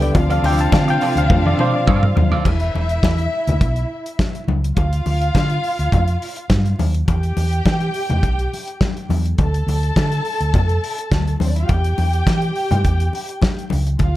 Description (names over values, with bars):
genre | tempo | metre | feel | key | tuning
disco | 104 BPM | 4/4 | straight | unclear | A4 = 440 Hz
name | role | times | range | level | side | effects
dark studio string section | second line | 0.0-14.2 s | C4 to A5 | -24 LUFS | equal | none
barky reed electric piano | accompaniment | 0.0-2.5 s | F3 to A5 | -21 LUFS | left 4 dB | overdrive
electric guitar at the edge of break-up | accompaniment | 0.0-2.5 s | C4 to E5 | -27 LUFS | right 7 dB | wah
clear symphonic string section | sustained chords | 0.0-2.4 s | C3 to E4 | -24 LUFS | right 1 dB | none
hollow-body short-scale fingered electric bass | bass | 0.0-14.2 s | E1 to E3 | -18 LUFS | equal | none
warm soul drum kit | drums | 0.0-14.1 s | crash cymbal, hi-hat, kick drum, snare drum, toms | -20 LUFS | equal | none
congas | percussion | 0.2-14.1 s | none | -25 LUFS | left 5 dB | none
room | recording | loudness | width
small room ambience | dark, warm production | -16 LUFS | side -15 dB against mid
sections
0.0-2.5 A section; 2.5-14.2 B section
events
reed electric piano solo 0.0-2.5; drum fill 1.3-2.5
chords
0.1 Dm7; 2.5 E5; 4.8 Dm; 7.1 Em; 9.4 D5; 11.7 Em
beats
| 0.15 0.73 1.30 1.88 | 2.46 3.03 3.61 4.19 | 4.76 5.34 5.92 6.50 | 7.08 7.65 8.23 8.81 | 9.38 9.96 10.54 11.12 | 11.70 12.27 12.85 13.43 | 14.00